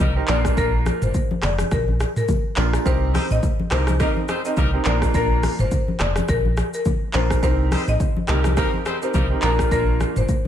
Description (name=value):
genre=afrobeats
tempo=105 BPM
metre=4/4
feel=swing 58% on 16ths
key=unclear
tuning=A4 = 439 Hz
part: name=clear horn section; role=second line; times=0.0-9.5 s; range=F3 to C5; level=-30 LUFS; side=left 2 dB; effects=none
part: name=sub bass with octave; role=bass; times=0.0-10.3 s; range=F1 to C2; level=-22 LUFS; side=equal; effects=none
part: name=afro-pop drum kit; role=drums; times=0.0-10.4 s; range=handclaps, hi-hat, kick drum, rim click, shaker, toms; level=-23 LUFS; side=equal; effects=vintage 12-bit sampler grit
part: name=congas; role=percussion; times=0.0-10.5 s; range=none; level=-28 LUFS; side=left 3 dB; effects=none
part: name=clear grand piano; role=accompaniment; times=0.2-10.2 s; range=Bb3 to Bb4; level=-25 LUFS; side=right 3 dB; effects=lush chorus
part: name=buzzing marimba with medium hard mallets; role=melody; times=0.3-10.4 s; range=G4 to Eb5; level=-27 LUFS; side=left 4 dB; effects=ping-pong delay
room=moderate plate reverb, RT60 1.4 s, small room ambience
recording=dreamy mix soaked in reverb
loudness=-18 LUFS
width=side -10 dB against mid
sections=0.0-10.5 A section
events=none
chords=0.3 Bb; 2.9 Cm7; 4.9 Bb; 7.4 Cm7; 9.4 Bb